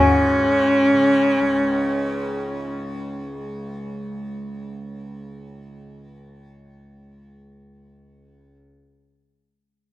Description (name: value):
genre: indian classical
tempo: 118 BPM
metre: 4/4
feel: straight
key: unclear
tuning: A4 = 440 Hz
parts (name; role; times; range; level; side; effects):
- warm sarangi; melody; 0.0-2.7 s; Db4; -18 LUFS; equal; none
- tanpura; drone; 0.0-8.6 s; Db2 to Db3; -28 LUFS; right 1 dB; none
room: light reverb, studio ambience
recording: rough home demo mix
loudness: -19 LUFS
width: side -15 dB against mid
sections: 0.0-2.0 A section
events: none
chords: none